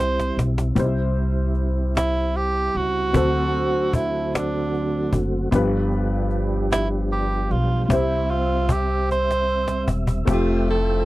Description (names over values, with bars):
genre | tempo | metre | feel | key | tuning
slow gospel | 50 BPM (dotted quarters) | 6/8 | straight | C major | A4 = 440 Hz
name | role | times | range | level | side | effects
breathy tenor saxophone | melody | 0.0-10.0 s | D4 to C5 | -23 LUFS | right 2 dB | none
warm upright piano | accompaniment | 0.0-11.1 s | G2 to E5 | -26 LUFS | left 2 dB | none
mellow tonewheel organ | sustained chords | 0.0-11.1 s | D3 to G5 | -27 LUFS | right 2 dB | fast rotary speaker, chorus vibrato
upright bass | bass | 0.0-11.1 s | E1 to D2 | -24 LUFS | equal | none
cajon | drums | 0.2-10.8 s | none | -24 LUFS | left 1 dB | none
warm saxophone section | melody | 10.3-11.1 s | A3 to A4 | -22 LUFS | right 2 dB | none
room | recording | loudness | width
little or no reverb | dry, close 1970s-style studio recording | -19 LUFS | side -17 dB against mid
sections
0.8-10.3 A section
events
drum fill 0.0-0.8, 9.1-10.3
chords
0.0 C; 3.1 D7; 5.5 G7; 7.9 C; 10.3 Fmaj9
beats
| 0.76 1.95 | 3.14 4.33 | 5.52 6.71 | 7.90 9.09 | 10.27